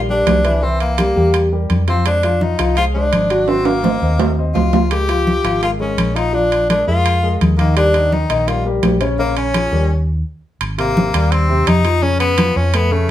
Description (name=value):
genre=Afro-Cuban jazz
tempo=168 BPM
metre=4/4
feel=straight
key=Eb major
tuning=A4 = 441 Hz
part: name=warm grand piano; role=accompaniment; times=0.0-13.1 s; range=C3 to Gb5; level=-20 LUFS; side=left 2 dB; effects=none
part: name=hollow-body short-scale fingered electric bass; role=bass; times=0.0-13.1 s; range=Ab1 to F2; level=-18 LUFS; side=equal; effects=none
part: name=bright tenor saxophone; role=melody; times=0.1-13.1 s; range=A3 to G4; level=-18 LUFS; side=left 1 dB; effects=none
part: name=congas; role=percussion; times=0.1-13.1 s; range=none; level=-20 LUFS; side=left 1 dB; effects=none
part: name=timbales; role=percussion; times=0.3-12.9 s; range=none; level=-22 LUFS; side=right 6 dB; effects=none
room=wet studio reverb, RT60 0.6 s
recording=band playing live in one room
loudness=-13 LUFS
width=side -12 dB against mid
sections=0.0-10.6 A section; 10.6-13.1 B section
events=drum fill 3.5-4.9; stop 9.9-10.6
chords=0.0 Ebmaj7 (rootless); 0.6 C7; 2.1 Fm7; 3.5 Ab13; 4.9 Db6; 6.3 Bb7; 7.8 Ebmaj7; 9.2 Bbm7; 9.9 N.C.; 10.6 Abmaj9; 12.0 Faug